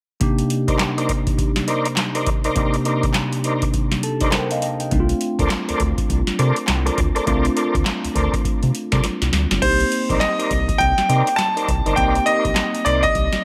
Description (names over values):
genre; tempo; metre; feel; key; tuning
R&B, new jack swing; 102 BPM; 4/4; swing 61% on 16ths; C dorian; A4 = 438 Hz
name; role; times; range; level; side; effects
tine electric piano; accompaniment; 0.2-13.4 s; C3 to A5; -26 LUFS; equal; phaser
booming analog drum machine; drums; 0.2-13.4 s; crash cymbal, handclaps, hi-hat, kick drum, snare drum; -24 LUFS; equal; overdrive
tonewheel organ; stabs; 0.7-13.1 s; Eb4 to D5; -27 LUFS; equal; chorus vibrato, fast rotary speaker
round analog bass; bass; 4.9-13.3 s; G1 to C3; -23 LUFS; equal; none
bright baby grand piano; melody; 9.6-13.4 s; C5 to A5; -21 LUFS; equal; none
room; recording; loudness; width
light reverb; none; -19 LUFS; mono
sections
0.2-9.6 A section; 9.6-13.4 B section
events
tine electric piano fill 3.7-4.9; drum fill 9.0-9.6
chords
0.2 Cm9; 4.9 Bbmaj9/C; 9.6 Cm9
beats
| 0.21 0.80 1.39 1.98 | 2.56 3.15 3.74 4.33 | 4.92 5.51 6.09 6.68 | 7.27 7.86 8.45 9.04 | 9.62 10.21 10.80 11.39 | 11.98 12.56 13.15